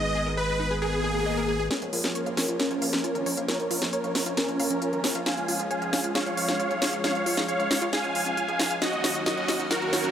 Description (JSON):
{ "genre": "uplifting trance", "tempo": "135 BPM", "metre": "4/4", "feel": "straight", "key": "unclear", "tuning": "A4 = 439 Hz", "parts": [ { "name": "supersaw chords", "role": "melody", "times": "0.0-10.1 s", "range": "Db4 to Ab5", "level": "-28 LUFS", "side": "right 1 dB", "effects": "low-pass filter, digital delay" }, { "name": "lush unison pad", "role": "sustained chords", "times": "0.0-10.1 s", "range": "Eb3 to F5", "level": "-33 LUFS", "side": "equal", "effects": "chorus" }, { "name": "gritty driven synth bass", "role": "bass", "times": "0.0-10.1 s", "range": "Ab1 to Eb2", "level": "-36 LUFS", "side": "equal", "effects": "high-pass filter" }, { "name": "wide unison pluck", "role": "arpeggios", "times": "0.2-10.1 s", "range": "Db4 to F5", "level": "-34 LUFS", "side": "left 1 dB", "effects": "digital delay" }, { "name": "swell and riser", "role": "sound effects", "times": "1.0-1.7, 9.8-10.1 s", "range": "none", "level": "-36 LUFS", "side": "left 4 dB", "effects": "none" }, { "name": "techno drum kit", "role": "drums", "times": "1.7-10.1 s", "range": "hi-hat, snare drum", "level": "-28 LUFS", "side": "equal", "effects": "overdrive, high-pass filter on snare, low-pass filter on snare, high-pass filter on hats, low-pass filter on hats" } ], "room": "light reverb", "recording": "none", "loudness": "-24 LUFS", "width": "side -9 dB against mid", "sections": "0.0-1.7 A section; 1.7-10.1 B section", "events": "swell 1.0-1.7; build-up 1.7-10.1; drum fill 1.7-10.1; filter sweep on supersaw synth 1.7-10.1; filter sweep on synth pluck 1.7-10.1", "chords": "0.0 Abm; 1.7 Bbm; 5.3 Db; 8.8 Ebm7" }